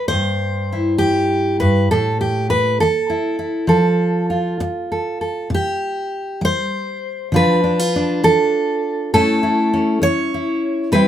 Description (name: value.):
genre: folk, solo fingerstyle acoustic guitar.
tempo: 67 BPM (dotted quarters).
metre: 6/8.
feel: straight.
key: unclear.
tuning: A4 = 439 Hz.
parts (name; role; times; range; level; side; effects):
fingerpicked steel-string acoustic guitar; solo; 0.0-11.1 s; G2 to C#5; -16 LUFS; equal; none.
room: light reverb.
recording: band playing live in one room.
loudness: -16 LUFS.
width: side -10 dB against mid.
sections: 0.0-5.5 A section; 5.5-11.1 B section.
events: none.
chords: 0.1 C/G; 1.9 A5; 3.7 F; 5.5 C5; 7.3 Dm; 9.1 A.